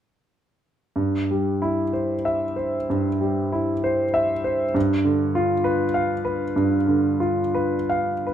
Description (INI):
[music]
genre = classical, romantic nocturne for solo piano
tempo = 52-67 BPM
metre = 4/4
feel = rubato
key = C major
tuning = A4 = 440 Hz
[part]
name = clear concert grand piano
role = solo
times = 1.0-8.3 s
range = G2 to F5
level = -20 LUFS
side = equal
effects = none
[sound]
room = moderate large studio reverb, RT60 0.8 s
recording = minimal, uncompressed stereo recording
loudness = -20 LUFS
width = side -9 dB against mid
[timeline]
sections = 1.0-8.3 A section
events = none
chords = 1.0 C/G; 4.8 G7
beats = | 0.97 1.95 2.90 3.85 | 4.76 5.66 6.56 7.54